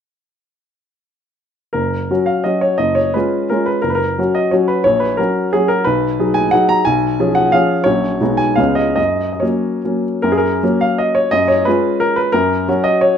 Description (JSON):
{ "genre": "classical, romantic triple-time dance for piano with dotted rhythms", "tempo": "132-195 BPM", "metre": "3/4", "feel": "rubato", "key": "F# major", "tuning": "A4 = 441 Hz", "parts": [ { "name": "warm baby grand piano", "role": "solo", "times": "1.7-13.2 s", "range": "F#1 to A#5", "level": "-13 LUFS", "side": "equal", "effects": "none" } ], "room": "light reverb", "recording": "minimal, uncompressed stereo recording", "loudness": "-13 LUFS", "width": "side -8 dB against mid", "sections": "1.7-10.2 A section; 10.2-13.2 A section", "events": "none", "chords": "1.7 F#; 2.8 C#7/F#; 3.8 F#; 4.9 F#/A#; 5.9 G#m7/B; 6.8 C#7/B; 7.9 F#/A#; 8.2 G#m/B; 8.6 C#7; 9.0 F#; 11.3 C#7/F#; 12.3 F#" }